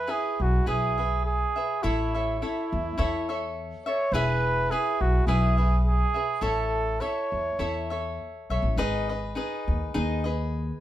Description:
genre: mexican folk, mariachi.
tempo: 104 BPM.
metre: 4/4.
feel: swing 53% on 8ths, rubato.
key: E major.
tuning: A4 = 440 Hz.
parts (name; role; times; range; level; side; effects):
warm trumpet; melody; 0.0-7.9 s; E4 to C#5; -28 LUFS; right 3 dB; none.
cavaquinho; accompaniment; 0.0-10.8 s; D#4 to E5; -30 LUFS; left 2 dB; none.
upright bass; bass; 0.0-10.7 s; E1 to E2; -27 LUFS; equal; none.
room: moderate small room reverb, RT60 0.5 s.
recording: band playing live in one room.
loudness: -24 LUFS.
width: side -13 dB against mid.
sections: 0.0-10.8 A section.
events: none.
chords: 0.0 E; 1.8 A; 4.1 E; 6.4 A; 8.8 G#m.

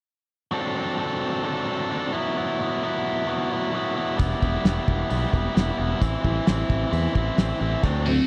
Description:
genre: indie rock.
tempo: 132 BPM.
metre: 4/4.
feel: straight.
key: unclear.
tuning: A4 = 438 Hz.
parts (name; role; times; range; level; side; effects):
biting overdriven guitar; riff; 0.5-8.3 s; E3 to A4; -27 LUFS; equal; none.
fingered electric bass; bass; 4.2-8.2 s; E1 to E2; -28 LUFS; equal; none.
cloth-damped thuddy drum kit; drums; 4.2-7.9 s; crash cymbal, hi-hat, kick drum, snare drum; -24 LUFS; equal; none.
scooped high-gain guitar; riff; 8.1-8.3 s; D3 to F#4; -30 LUFS; equal; distortion, lush chorus.
room: little or no reverb.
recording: dry, close 1970s-style studio recording.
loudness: -25 LUFS.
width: mono.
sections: 0.5-7.8 A section.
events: none.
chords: 0.5 D7; 2.1 Bsus4; 4.2 Em; 6.0 Am.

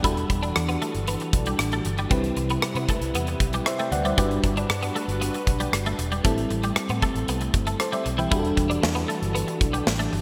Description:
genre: 1980s-style pop.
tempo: 116 BPM.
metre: 4/4.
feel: straight.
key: unclear.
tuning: A4 = 440 Hz.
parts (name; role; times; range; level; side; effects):
FM electric piano; accompaniment; 0.0-10.2 s; G3 to G5; -32 LUFS; equal; none.
warm analog pad; sustained chords; 0.0-10.2 s; C3 to B4; -33 LUFS; equal; chorus.
twelve-string electric guitar; riff; 0.0-10.2 s; E3 to E4; -32 LUFS; equal; ensemble chorus, delay.
vintage muted fingered electric bass; bass; 0.0-10.2 s; E1 to C3; -31 LUFS; equal; none.
big rock drum kit; drums; 0.0-10.2 s; hi-hat, kick drum, rim click, snare drum; -29 LUFS; equal; none.
room: wet lush hall reverb, RT60 2.7 s.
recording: bright 1980s-style digital production.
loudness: -25 LUFS.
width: mono.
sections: 0.0-10.2 A section.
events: none.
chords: 0.0 Em11; 2.1 Cmaj7; 4.2 Gmaj7; 6.2 Am7; 8.3 Em11.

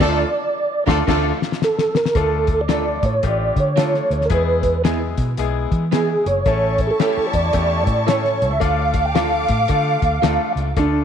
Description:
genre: uptempo 1960s-style soul.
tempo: 111 BPM.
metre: 4/4.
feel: swing 62% on 8ths.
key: D harmonic minor.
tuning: A4 = 440 Hz.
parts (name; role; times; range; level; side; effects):
mellow tonewheel organ; melody; 0.0-11.0 s; D4 to G5; -20 LUFS; right 2 dB; chorus vibrato, stopped rotary speaker.
warm horn section; second line; 0.0-1.3 s; F3 to A4; -28 LUFS; right 1 dB; none.
warm studio violin section; second line; 0.0-1.3, 6.5-10.7 s; E4 to D6; -28 LUFS; left 1 dB; none.
bright grand piano; accompaniment; 0.0-11.0 s; G#3 to A4; -25 LUFS; left 11 dB; none.
electric guitar through a small old amp; stabs; 0.0-10.4 s; B3 to D5; -27 LUFS; right 13 dB; ensemble chorus, tape echo.
vintage muted fingered electric bass; bass; 0.0-11.0 s; F#1 to E3; -22 LUFS; equal; none.
cloth-damped thuddy drum kit; drums; 0.0-10.9 s; crash cymbal, hi-hat, kick drum, snare drum; -22 LUFS; left 3 dB; none.
room: light reverb, small room ambience.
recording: 1960s-style stereo with parts hard left and right.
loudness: -16 LUFS.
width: side -8 dB against mid.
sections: 0.0-2.2 A section; 2.2-10.8 B section.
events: band accent 0.0-2.2; drum fill 1.1-2.2.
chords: 0.0 Dm; 4.3 E; 6.5 A; 8.6 Dm.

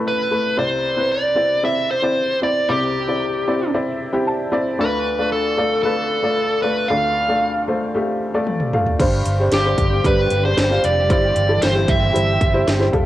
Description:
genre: piano-driven pop.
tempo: 114 BPM.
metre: 4/4.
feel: straight.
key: C major.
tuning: A4 = 441 Hz.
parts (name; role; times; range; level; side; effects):
clear upright piano; accompaniment; 0.0-13.1 s; A1 to A5; -21 LUFS; left 1 dB; cassette tape.
dark smooth lead guitar; melody; 0.1-12.9 s; G4 to F5; -20 LUFS; equal; overdrive, cassette tape.
house drum kit; drums; 8.5-13.1 s; crash cymbal, hi-hat, kick drum, snare drum, toms; -21 LUFS; equal; none.
warm symphonic string section; sustained chords; 9.0-13.1 s; D3 to G4; -27 LUFS; right 2 dB; cassette tape.
fingered electric bass; bass; 9.0-13.1 s; F1 to G1; -21 LUFS; equal; none.
room: light reverb.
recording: home recording on cassette.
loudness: -16 LUFS.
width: side -14 dB against mid.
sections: 0.0-9.0 A section; 9.0-13.1 B section.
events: upright piano fill 3.2-4.8; drum fill 8.5-9.0.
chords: 0.0 Asus2; 0.6 Cadd9; 4.8 Dm; 9.0 Gsus4; 11.1 C/G.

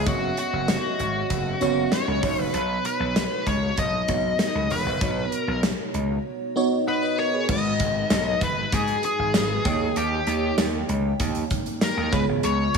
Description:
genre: 1980s-style pop.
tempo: 97 BPM.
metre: 4/4.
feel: straight.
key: G# minor.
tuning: A4 = 441 Hz.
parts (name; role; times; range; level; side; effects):
smooth overdriven lead guitar; melody; 0.0-12.8 s; F#4 to D#5; -26 LUFS; left 3 dB; tape echo.
FM electric piano with soft pad layer; accompaniment; 0.0-12.8 s; G#2 to G5; -27 LUFS; right 2 dB; chorus.
gritty slap bass; bass; 0.0-12.8 s; E1 to G#2; -27 LUFS; equal; overdrive.
gated 80s drum kit; drums; 0.1-12.8 s; crash cymbal, hi-hat, kick drum, snare drum, tambourine; -26 LUFS; right 1 dB; none.
room: light reverb, studio reverb.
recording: small room ambience.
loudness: -21 LUFS.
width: side -5 dB against mid.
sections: 0.0-7.5 A section; 7.5-12.8 B section.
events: none.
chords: 0.0 F#sus4; 2.2 Badd9; 7.5 G#m7; 9.7 D#7; 12.1 C#7.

